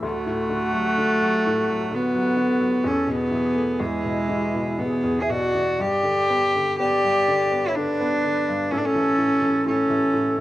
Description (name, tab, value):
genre	celtic folk, Celtic slow air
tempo	62 BPM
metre	3/4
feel	uneven beats, rubato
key	unclear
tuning	A4 = 440 Hz
part	rich cello	melody	0.0-10.4 s	G#3 to G#4	-21 LUFS	equal	cassette tape
part	clear upright piano	accompaniment	0.0-10.4 s	D2 to B3	-28 LUFS	left 2 dB	cassette tape
part	baroque flute	second line	0.1-10.4 s	E4 to E5	-26 LUFS	equal	cassette tape
room	light reverb, small room ambience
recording	home recording on cassette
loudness	-19 LUFS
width	side -15 dB against mid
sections	0.0-10.4 A section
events	none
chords	0.0 D; 2.9 Esus4; 3.8 E; 5.8 G; 8.7 A